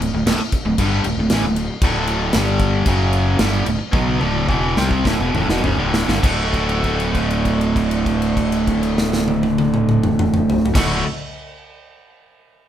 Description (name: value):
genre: classic rock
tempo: 98-116 BPM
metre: 4/4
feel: straight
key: D major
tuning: A4 = 440 Hz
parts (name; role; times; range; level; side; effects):
- cranked stack guitar; riff; 0.0-11.0 s; D2 to F#4; -19 LUFS; right 1 dB; overdrive
- fuzz fingered electric bass; bass; 0.0-11.0 s; D1 to C2; -22 LUFS; equal; overdrive
- big rock drum kit; drums; 0.0-10.9 s; crash cymbal, kick drum, snare drum, toms; -21 LUFS; equal; none
room: light reverb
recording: band playing live in one room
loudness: -16 LUFS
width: side -10 dB against mid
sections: 0.0-6.2 A section; 6.2-11.1 B section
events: slowing down 1.8-6.2; drum fill 3.9-6.2; held note 6.2-10.7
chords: 0.0 D5; 2.3 G5; 2.9 F#5; 3.4 D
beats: 0.27 0.79 1.31 | 1.82 2.34 2.87 3.40 | 3.93 4.49 5.05 5.63 | 6.23 6.84 7.45 8.06 | 8.67 9.28 9.89 10.50